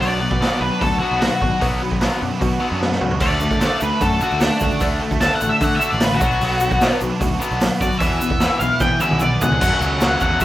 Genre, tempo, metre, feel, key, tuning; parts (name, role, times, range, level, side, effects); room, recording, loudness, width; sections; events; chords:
indie rock; 150 BPM; 4/4; straight; A4 = 440 Hz
octave-fuzz lead guitar; melody; 0.0-10.4 s; D4 to A5; -21 LUFS; left 1 dB; distortion
biting overdriven guitar; riff; 0.0-10.4 s; E2 to F#4; -23 LUFS; left 4 dB
distorted electric guitar; riff; 0.0-10.4 s; E3 to G#4; -25 LUFS; right 4 dB; overdrive, analog chorus
fuzz picked electric bass; bass; 0.0-10.4 s; G#1 to F#3; -24 LUFS; right 1 dB; overdrive
raw garage drum kit; drums; 0.0-10.4 s; crash cymbal, hi-hat, kick drum, snare drum, toms; -22 LUFS; equal
egg shaker; percussion; 3.2-10.4 s; -36 LUFS; right 3 dB
moderate studio reverb, RT60 0.5 s; rough home demo mix; -16 LUFS; side -14 dB against mid
0.0-9.6 A section
lead electric guitar solo 0.0-9.6; drum fill 2.8-3.2, 8.8-9.6
0.0 Bm; 3.2 D; 6.2 Bm; 8.0 E; 9.6 F#m7